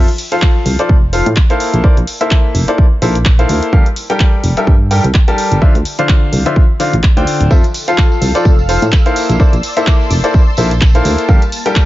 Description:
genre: piano house.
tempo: 127 BPM.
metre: 4/4.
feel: swing 57% on 16ths.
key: unclear.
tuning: A4 = 440 Hz.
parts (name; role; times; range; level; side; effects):
bright upright piano; riff; 0.0-11.9 s; D3 to A5; -16 LUFS; left 2 dB; sidechain pumping, digital delay.
solid FM bass; bass; 0.0-11.4 s; D1 to A2; -14 LUFS; equal; sidechain pumping.
punchy analog drum machine; drums; 0.1-11.9 s; handclaps, hi-hat; -21 LUFS; equal; overdrive.
electronic kick drum; drums; 0.4-11.9 s; none; -10 LUFS; equal; none.
analog string pad; sustained chords; 7.5-11.9 s; Bb3 to F6; -24 LUFS; left 1 dB; ensemble chorus, phaser, sidechain pumping.
tambourine; percussion; 7.5-11.9 s; none; -30 LUFS; right 3 dB; none.
room: little or no reverb.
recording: nothing above 7.6 kHz.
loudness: -9 LUFS.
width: side -16 dB against mid.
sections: 0.0-11.9 A section.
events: none.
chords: 0.0 Bbmaj9#11; 3.7 Gmadd9; 5.6 Dm9; 7.5 Bbmaj9#11; 11.3 Gm9.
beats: 0.42 0.89 1.37 | 1.84 2.31 2.78 3.25 | 3.73 4.20 4.67 5.14 | 5.62 6.09 6.56 7.04 | 7.51 7.98 8.45 8.93 | 9.40 9.87 10.34 10.81 | 11.29 11.76.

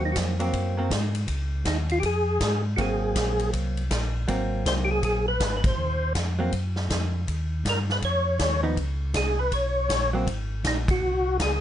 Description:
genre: soul jazz organ trio.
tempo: 160 BPM.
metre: 4/4.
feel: swing 64% on 8ths.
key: Ab mixolydian.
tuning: A4 = 440 Hz.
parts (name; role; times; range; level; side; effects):
percussive tonewheel organ; melody; 0.0-11.6 s; Eb4 to Db5; -26 LUFS; equal; slow rotary speaker, chorus vibrato.
vintage hollow-body jazz guitar; accompaniment; 0.0-10.3 s; F3 to Eb4; -28 LUFS; right 2 dB; none.
mellow tonewheel organ; bass; 0.0-11.6 s; Ab1 to Ab2; -27 LUFS; equal; slow rotary speaker.
swinging big-band drum kit; drums; 0.2-11.5 s; hi-hat, kick drum, ride cymbal, snare drum; -30 LUFS; equal; none.
room: light reverb.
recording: nothing above 10.3 kHz.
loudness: -23 LUFS.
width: side -11 dB against mid.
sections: 0.0-11.6 A section.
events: band accent 5.6, 10.8.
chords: 0.0 Ab9; 1.3 Dbadd9; 2.8 Ab9; 7.3 Eb9; 8.8 Bbm9; 10.3 Ab9.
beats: 0.16 0.53 0.91 | 1.28 1.66 2.03 2.41 | 2.78 3.16 3.53 3.90 | 4.28 4.65 5.03 5.40 | 5.78 6.15 6.53 6.90 | 7.28 7.65 8.02 8.40 | 8.77 9.15 9.52 9.90 | 10.27 10.65 11.02 11.40.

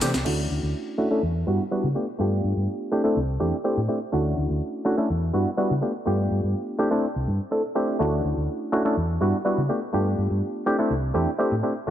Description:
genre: house.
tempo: 124 BPM.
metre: 4/4.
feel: straight.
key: unclear.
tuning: A4 = 440 Hz.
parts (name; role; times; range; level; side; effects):
barky reed electric piano; accompaniment; 0.0-11.9 s; E3 to A4; -24 LUFS; equal; overdrive, phaser, vintage 12-bit sampler grit, low-pass filter.
hollow-body short-scale fingered electric bass; bass; 0.0-11.9 s; C2 to C#3; -24 LUFS; equal; low-pass filter.
room: light reverb.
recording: none.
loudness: -22 LUFS.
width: side -10 dB against mid.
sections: 0.3-11.9 A section.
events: filter sweep 0.3-11.9.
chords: 0.3 Dmaj7; 1.2 Em9; 2.0 G7; 2.9 C6; 4.1 Dmaj7; 5.1 Em9; 5.8 G7; 6.8 C6; 8.0 Dmaj7; 9.0 Em9; 9.7 G7; 10.7 C6.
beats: | 0.26 0.74 1.23 1.71 | 2.20 2.68 3.16 3.65 | 4.13 4.62 5.10 5.58 | 6.07 6.55 7.04 7.52 | 8.00 8.49 8.97 9.45 | 9.94 10.42 10.90 11.39 | 11.87.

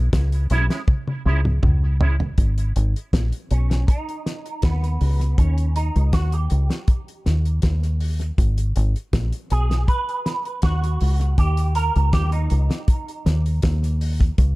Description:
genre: roots reggae.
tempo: 80 BPM.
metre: 4/4.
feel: straight.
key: G# harmonic minor.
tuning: A4 = 437 Hz.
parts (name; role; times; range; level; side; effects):
deep dub fingered electric bass; bass; 0.0-14.6 s; G#1 to D#2; -19 LUFS; equal; none.
damped 70s drum kit; drums; 0.1-14.6 s; hi-hat, kick drum, snare drum, toms; -21 LUFS; equal; none.
electric guitar with an envelope filter; accompaniment; 0.5-13.4 s; G#3 to B4; -28 LUFS; right 4 dB; ensemble chorus, tape echo.
room: studio ambience.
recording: dark, warm production.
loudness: -18 LUFS.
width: side -21 dB against mid.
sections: 0.0-2.4 A section; 2.4-14.4 B section.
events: drum fill 0.9-2.4; clean electric guitar solo 2.4-14.4.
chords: 0.0 C#m; 2.4 G#m; 5.4 D#; 8.4 G#m; 11.4 D#7; 12.9 N.C..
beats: 0.13 0.88 1.63 | 2.38 3.13 3.88 4.63 | 5.38 6.13 6.88 7.63 | 8.38 9.13 9.88 10.63 | 11.38 12.13 12.88 13.63 | 14.39.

